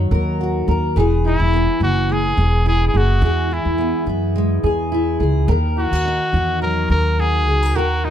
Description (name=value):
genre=acoustic pop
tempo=106 BPM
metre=4/4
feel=swing 55% on 16ths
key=unclear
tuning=A4 = 441 Hz
part: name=fingerpicked steel-string acoustic guitar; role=accompaniment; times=0.0-8.1 s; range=D#3 to A#4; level=-20 LUFS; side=left 1 dB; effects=double-tracked left and right
part: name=upright bass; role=bass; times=0.0-8.1 s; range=E1 to F#2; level=-18 LUFS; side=equal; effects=none
part: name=clear trumpet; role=melody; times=1.3-8.1 s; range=D#4 to A#4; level=-21 LUFS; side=equal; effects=none
room=light reverb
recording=none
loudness=-15 LUFS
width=side -10 dB against mid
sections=0.0-8.1 A section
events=none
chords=0.0 D#m; 1.0 E; 5.5 D#m